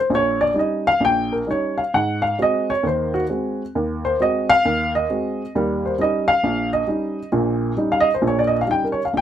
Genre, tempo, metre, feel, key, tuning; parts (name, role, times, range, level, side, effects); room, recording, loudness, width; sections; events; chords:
solo jazz; 133 BPM; 4/4; swing 66% on 8ths, rubato; Eb mixolydian; A4 = 440 Hz
dark upright piano; solo; 0.0-9.2 s; Bb1 to G5; -18 LUFS; equal
little or no reverb; close, detailed microphones; -18 LUFS; side -10 dB against mid
0.0-9.2 A section
upright piano solo 0.0-9.2
0.0 Eb7; 1.9 Ab7; 5.5 Eb7